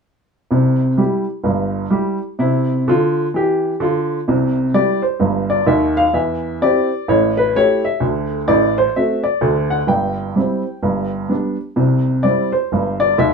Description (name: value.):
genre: jazz, stride piano.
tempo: 128 BPM.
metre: 4/4.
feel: swing 61% on 8ths.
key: C major.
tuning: A4 = 438 Hz.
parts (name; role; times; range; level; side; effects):
warm upright piano; solo; 0.5-13.3 s; G1 to G5; -15 LUFS; equal; none.
room: wet studio ambience, RT60 0.5 s.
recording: band playing live in one room.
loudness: -15 LUFS.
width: side -5 dB against mid.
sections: 0.5-4.3 A section; 4.3-13.3 B section.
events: none.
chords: 0.5 C; 6.2 C/E; 7.1 A5; 8.0 D7; 9.9 C/G; 10.8 G; 11.8 C.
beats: | 0.52 0.99 1.46 1.93 | 2.40 2.87 3.34 3.81 | 4.28 4.75 5.21 5.68 | 6.15 6.62 7.09 7.55 | 8.02 8.49 8.96 9.43 | 9.89 10.36 10.83 11.30 | 11.77 12.24 12.71 13.17.